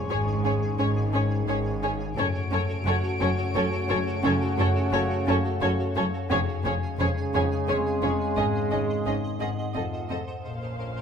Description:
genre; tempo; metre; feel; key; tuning
cinematic, suspense film score; 87 BPM; 3/4; straight; F# hungarian minor; A4 = 440 Hz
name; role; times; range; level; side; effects
clear French horn section; sustained chords; 0.0-10.1 s; C#3 to G#4; -32 LUFS; left 2 dB; none
pulsing gated texture; sustained chords; 0.0-11.0 s; F#4 to G#5; -37 LUFS; right 3 dB; chorus, built-in reverb
warm trombone section; sustained chords; 0.0-10.1 s; C#3 to A3; -33 LUFS; right 7 dB; none
muted symphonic violin section; texture; 0.0-5.9 s; C#5 to D7; -37 LUFS; left 3 dB; none
vibraphone with medium hard mallets; texture; 0.0-10.5 s; B#3 to B#5; -38 LUFS; equal; none
muted symphonic violin section; melody; 0.1-11.0 s; C#5 to F5; -32 LUFS; left 3 dB; none
muted symphonic violin section; second line; 0.1-11.0 s; G#4 to C5; -34 LUFS; right 2 dB; none
muted chamber viola section; accompaniment; 0.1-11.0 s; C4 to C#4; -34 LUFS; right 2 dB; none
folk marimba with medium mallets; riff; 0.1-11.0 s; E#2 to Bb2; -30 LUFS; left 5 dB; none
muted symphonic cello section; bass; 0.1-11.0 s; E#2 to Bb2; -33 LUFS; right 2 dB; none
muted symphonic double bass section; bass; 0.1-11.0 s; E#1 to Bb1; -32 LUFS; right 2 dB; none
room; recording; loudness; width
moderate scoring stage reverb, RT60 1.6 s; close, detailed microphones; -23 LUFS; side -7 dB against mid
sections
0.0-10.4 A section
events
none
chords
0.1 G#sus4; 2.2 F#m; 6.3 C#/E#; 8.4 G#sus4; 9.8 F7; 10.4 Bbmadd9

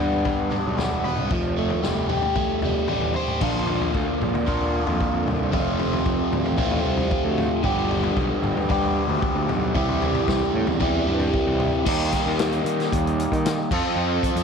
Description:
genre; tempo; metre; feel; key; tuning
psychedelic rock; 114 BPM; 4/4; straight; unclear; A4 = 441 Hz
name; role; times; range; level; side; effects
overdriven electric guitar; riff; 0.0-14.4 s; F2 to C5; -23 LUFS; equal; phaser
fuzz picked electric bass; bass; 0.0-14.4 s; E1 to Eb3; -27 LUFS; right 1 dB; overdrive
vintage drum kit; drums; 0.1-14.4 s; crash cymbal, hi-hat, kick drum, snare drum, toms; -27 LUFS; left 2 dB; none
room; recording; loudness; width
small room ambience; 1960s-style stereo; -20 LUFS; side -6 dB against mid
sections
0.0-3.4 A section; 3.4-11.9 B section; 11.9-14.4 C section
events
none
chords
0.0 G; 1.3 Fadd9; 3.4 Bb; 5.5 F; 7.6 G7; 9.8 C; 11.9 Eb; 13.7 F

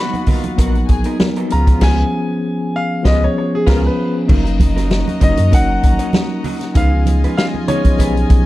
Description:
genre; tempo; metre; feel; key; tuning
lush 1970s-style soul; 97 BPM; 4/4; swing 54% on 16ths; F# major; A4 = 440 Hz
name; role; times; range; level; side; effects
clear concert grand piano; melody; 0.0-8.5 s; G#4 to B5; -22 LUFS; left 1 dB; none
warm studio string section; second line; 0.0-8.5 s; E#4 to A#5; -29 LUFS; left 3 dB; none
mellow tine electric piano; accompaniment; 0.0-8.5 s; E#3 to A#4; -20 LUFS; left 2 dB; fast stereo tremolo
warm horn section; stabs; 0.0-3.8 s; B3 to F#4; -31 LUFS; left 2 dB; slapback echo
electric guitar through a small old amp; riff; 0.1-8.3 s; F#3 to C#5; -28 LUFS; right 5 dB; none
vintage drum kit; drums; 0.1-8.5 s; crash cymbal, hi-hat, kick drum, snare drum; -15 LUFS; equal; none
congas; percussion; 0.1-8.5 s; none; -25 LUFS; right 5 dB; none
sub bass with octave; bass; 0.6-8.4 s; F#1 to F#2; -16 LUFS; equal; none
room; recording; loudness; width
light reverb; dark, warm production; -13 LUFS; side -16 dB against mid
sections
0.0-4.3 A section; 4.3-8.5 B section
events
grand piano solo 0.0-4.3; band accent 1.8-4.3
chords
0.0 Bmaj7; 1.5 C#7; 4.3 F#6; 6.8 C#9

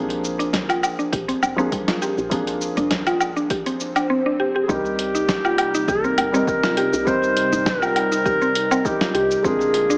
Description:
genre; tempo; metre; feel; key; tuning
organic downtempo; 101 BPM; 4/4; swing 54% on 16ths; C minor; A4 = 441 Hz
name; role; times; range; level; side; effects
felt-muted upright piano; accompaniment; 0.0-10.0 s; F3 to Bb4; -26 LUFS; equal; sidechain pumping, digital delay
mallet-like synth pluck; arpeggios; 0.0-10.0 s; G3 to G4; -23 LUFS; equal; chorus, digital delay
woody FM bass; bass; 0.0-10.0 s; F1 to C2; -30 LUFS; equal; sidechain pumping
bronze singing bowl; texture; 0.0-4.1 s; C5; -43 LUFS; equal; none
dusty soul sampler-style drum kit; drums; 0.1-10.0 s; hi-hat, shaker, snare drum, woodblock; -23 LUFS; equal; none
electronic kick drum; drums; 0.5-9.6 s; none; -29 LUFS; equal; none
swell; sound effects; 3.8-4.7 s; none; -26 LUFS; equal; none
warm clarinet; melody; 4.6-10.0 s; G4 to C5; -20 LUFS; equal; vintage 12-bit sampler grit
warm analog pad; sustained chords; 4.7-10.0 s; C3 to F4; -30 LUFS; equal; lush chorus, sidechain pumping
room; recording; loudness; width
moderate recital hall reverb, RT60 1.6 s; small speaker sound; -18 LUFS; side -38 dB against mid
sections
0.0-4.7 A section; 4.7-10.0 B section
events
swell 3.8-4.7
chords
0.0 Bb7; 4.7 Cm7; 9.4 Bb7

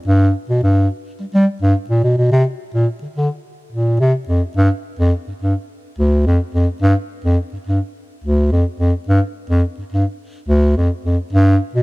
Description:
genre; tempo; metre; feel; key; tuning
funk; 107 BPM; 4/4; straight; unclear; A4 = 439 Hz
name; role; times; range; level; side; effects
dark bass clarinet; solo; 0.1-11.8 s; D2 to G3; -14 LUFS; equal; none
room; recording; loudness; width
small room ambience; dry, close 1970s-style studio recording; -15 LUFS; side -22 dB against mid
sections
0.0-2.3 A section; 2.3-11.3 B section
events
none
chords
none

